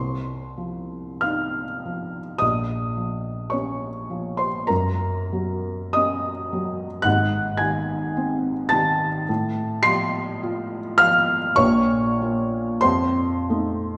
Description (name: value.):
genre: classical, romantic nocturne for solo piano.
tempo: 42-56 BPM.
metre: 4/4.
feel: rubato.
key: Bb minor.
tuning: A4 = 439 Hz.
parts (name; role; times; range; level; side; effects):
felt-muted upright piano; solo; 0.0-14.0 s; Ab1 to C7; -23 LUFS; equal; none.
room: wet scoring stage reverb, RT60 1.9 s.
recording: recorded in a church or concert hall.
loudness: -23 LUFS.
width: mono.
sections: 0.0-14.0 A section.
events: none.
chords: 0.0 F5/C; 2.4 Bbm; 4.7 Gb; 7.1 Ab; 9.3 F/A; 11.6 Bbm; 12.8 F7.